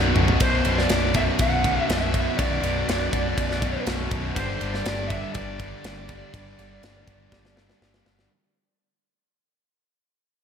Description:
heavy metal; 122 BPM; 4/4; straight; B minor; A4 = 438 Hz
distorted electric guitar; riff; 0.0-8.3 s; B1 to G3; -29 LUFS; left 12 dB; overdrive, slapback echo
high-gain distorted guitar; riff; 0.0-8.3 s; B1 to G3; -29 LUFS; right 10 dB; distortion, slapback echo
overdriven picked electric bass; bass; 0.0-8.2 s; B0 to G1; -28 LUFS; equal
tight metal drum kit; drums; 0.2-8.3 s; kick drum, ride cymbal, snare drum, toms; -27 LUFS; equal
bluesy overdriven lead guitar; melody; 0.4-7.8 s; C5 to F#5; -28 LUFS; right 1 dB; distortion, tape echo
moderate lush hall reverb, RT60 1.7 s, studio reverb; big arena sound; -21 LUFS; side -7 dB against mid
0.4-8.3 A section
drum fill 0.0-0.4, 7.3-8.3; fade-out 0.4-8.3
0.4 Bm; 4.4 G5
| 0.41 0.90 1.40 1.89 | 2.38 2.88 3.37 3.87 | 4.36 4.86 5.35 5.84 | 6.34 6.83 7.32 7.82

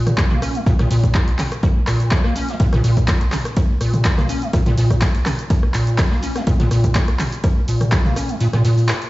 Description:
acid house; 124 BPM; 4/4; swing 53% on 16ths; Bb minor; A4 = 439 Hz
acid bass, square; riff; 0.0-8.9 s; Ab2 to Db4; -19 LUFS; equal; tube saturation, ensemble chorus, sidechain pumping, dub echo
punchy analog drum machine; drums; 0.1-9.1 s; cabasa, handclaps, hi-hat, ride cymbal, rim click, toms; -23 LUFS; equal; overdrive
electronic kick drum; drums; 0.2-8.0 s; -16 LUFS; equal; overdrive
vintage drum kit; drums; 0.2-9.1 s; hi-hat, snare drum; -35 LUFS; equal
light reverb, digital ambience; played on a big sound system in a bare room, stone room reverb, nothing above 7.7 kHz; -15 LUFS; side -18 dB against mid
0.0-9.1 A section
kick drops out 8.4-9.1
0.18 | 0.66 1.15 1.63 2.12 | 2.60 3.08 3.57 4.05 | 4.54 5.02 5.50 5.99 | 6.47 6.95 7.44 7.92 | 8.41 8.89

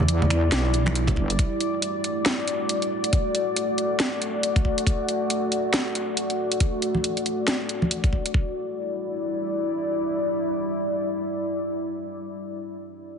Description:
deep dubstep; 138 BPM; 4/4; swing 59% on 16ths, half-time; E minor; A4 = 439 Hz
deep dark ambient pad; sustained chords; 0.0-12.6 s; G3 to D5; -25 LUFS; left 1 dB; chorus, built-in reverb
wobble bass; bass; 0.0-1.4 s; G1 to E2; -22 LUFS; equal; chorus
congas; percussion; 0.0-1.3, 6.9-7.9 s; -28 LUFS; right 2 dB
garage drum kit; drums; 0.1-8.3 s; finger snaps, hi-hat, snare drum; -26 LUFS; equal; overdrive
electronic kick drum; drums; 1.1-8.4 s; -22 LUFS; equal
moderate spring reverb, RT60 1.9 s, digital ambience; heavily compressed radio sound, multiband compression, nothing above 10.4 kHz; -22 LUFS; side -7 dB against mid
0.0-8.3 A section; 8.3-11.8 B section
0.0 Em7; 1.4 D; 8.3 Em7
0.08 0.52 0.95 | 1.39 1.82 2.26 2.69 | 3.13 3.56 4.00 4.43 | 4.87 5.30 5.74 6.17 | 6.60 7.04 7.47 7.91 | 8.34 8.78 9.21 9.65 | 10.08 10.52 10.95 11.39

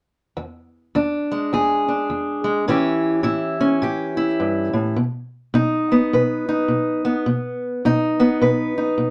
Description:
blues; 105 BPM; 4/4; swing 62% on 8ths; A4 = 440 Hz
fingerpicked steel-string acoustic guitar; accompaniment; 0.4-9.1 s; E2 to B4; -20 LUFS; equal
moderate studio reverb, RT60 0.6 s; dark, warm production; -20 LUFS; mono
0.4-9.1 A section
0.4 E7; 2.7 A7; 5.0 B
| 0.37 0.94 1.52 2.09 | 2.67 3.24 3.82 4.39 | 4.96 5.54 6.11 6.69 | 7.26 7.83 8.40 8.97

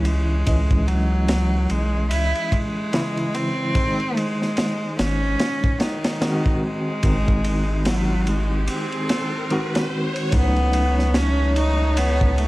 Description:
trip hop; 73 BPM; 4/4; swing 60% on 16ths; A4 = 442 Hz
clear cello; melody; 0.0-12.5 s; D#3 to E4; -25 LUFS; equal; tape echo
bell-like tine electric piano; accompaniment; 0.0-12.5 s; C#3 to D#5; -26 LUFS; equal; tremolo
round analog bass; bass; 0.0-12.5 s; G#1 to C#2; -21 LUFS; equal
crunchy breakbeat drum kit; drums; 0.0-12.5 s; kick drum, ride cymbal, snare drum; -25 LUFS; equal
riser; sound effects; 5.6-10.3 s; -33 LUFS; equal
warm studio violin section; sustained chords; 10.3-12.5 s; A3 to C#5; -29 LUFS; equal; vintage 12-bit sampler grit
backwards swelling texture; texture; 10.9-12.5 s; C#5; -36 LUFS; right 3 dB
light reverb; vinyl crackle, lossy compression artefacts; -19 LUFS; side -19 dB against mid
0.0-10.3 A section; 10.3-12.5 B section
riser 5.6-10.3; break 8.7-10.3
0.0 C#madd9; 3.8 G#; 10.3 B9/C#
| 0.47 1.29 2.11 2.93 | 3.75 4.58 5.40 6.22 | 7.04 7.87 8.69 9.51 | 10.33 11.15 11.97

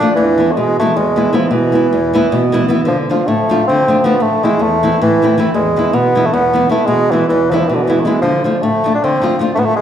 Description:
balkan folk; 314 BPM (eighths); 7/8; straight; E phrygian dominant; A4 = 440 Hz
warm bassoon; melody; 0.0-9.8 s; D3 to D4; -14 LUFS; right 1 dB
nylon-string guitar; accompaniment; 0.0-9.8 s; E2 to F4; -14 LUFS; equal
wet recital hall reverb, RT60 1.6 s; recorded in a church or concert hall; -11 LUFS; side -9 dB against mid
0.0-2.9 A section; 2.9-9.8 B section
0.2 E; 2.9 Dm; 4.2 Am; 5.5 E; 8.2 Dm
| 0.16 0.35 0.55 0.74 0.93 1.12 1.32 | 1.51 1.70 1.90 2.09 2.28 2.47 2.66 | 2.86 3.05 3.24 3.43 3.62 3.82 4.01 | 4.20 4.39 4.58 4.77 4.96 5.16 5.35 | 5.54 5.73 5.92 6.11 6.30 6.49 6.68 | 6.87 7.06 7.25 7.45 7.63 7.83 8.02 | 8.21 8.40 8.59 8.78 8.97 9.16 9.35 | 9.54 9.73

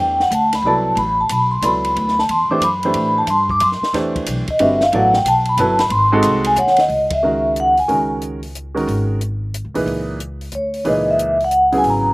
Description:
modal jazz; 182 BPM; 3/4; swing 64% on 8ths; A dorian, C# dorian from 6.9 s; A4 = 440 Hz
vibraphone with soft mallets; melody; 0.0-8.1, 10.6-12.1 s; C#5 to D6; -15 LUFS; equal
clear upright piano; accompaniment; 0.0-12.1 s; A#2 to D5; -20 LUFS; right 2 dB
upright bass; bass; 0.0-12.1 s; G1 to A2; -24 LUFS; equal
compact cocktail drum kit; drums; 0.2-11.9 s; hi-hat, kick drum, ride cymbal, snare drum; -29 LUFS; equal
little or no reverb; recorded outdoors, with no room sound; -14 LUFS; side -23 dB against mid
0.0-6.9 A section; 6.9-12.1 B section
vibraphone solo 0.0-6.9; band accent 7.1
0.0 Am9; 1.0 Bm7/A; 3.0 Am9; 4.9 Bm7/A; 5.9 G#7b9; 6.9 C#m69
0.32 0.65 | 0.98 1.31 1.64 | 1.97 2.29 2.62 | 2.95 3.28 3.61 | 3.94 4.27 4.60 | 4.92 5.25 5.58 | 5.91 6.24 6.57 | 6.90 7.23 7.56 | 7.89 8.21 8.54 | 8.88 9.20 9.53 | 9.86 10.19 10.52 | 10.85 11.18 11.51 | 11.84

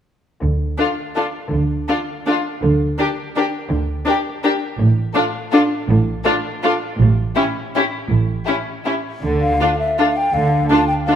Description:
classical, orchestral ballroom waltz; 163 BPM; 3/4; uneven beats, rubato; D minor; A4 = 442 Hz
dark studio double bass section; bass; 0.4-10.6 s; A1 to D2; -20 LUFS; right 2 dB
rich studio cello section; bass; 0.4-10.6 s; A2 to D3; -22 LUFS; right 2 dB
warm studio violin section; melody; 0.8-11.2 s; G4 to Bb4; -27 LUFS; left 4 dB
rich studio violin section; second line; 0.8-11.2 s; E4 to G4; -23 LUFS; left 3 dB
rich studio viola section; accompaniment; 0.8-11.2 s; C#4 to D4; -21 LUFS; equal
mellow hollow concert flute; second line; 9.4-11.2 s; E5 to A5; -18 LUFS; left 2 dB
moderate scoring stage reverb, RT60 1.9 s; -16 LUFS; side -9 dB against mid
0.4-9.2 A section; 9.2-11.2 B section
0.4 N.C.; 4.8 D5/A; 7.0 A; 9.2 Dm
| 0.41 0.79 1.17 | 1.52 1.89 2.27 | 2.63 2.99 3.36 | 3.71 4.07 4.44 | 4.80 5.15 5.53 | 5.89 6.25 6.64 | 7.00 7.37 7.75 | 8.10 8.47 8.86 | 9.23 9.60 9.98 | 10.34 10.70 11.08

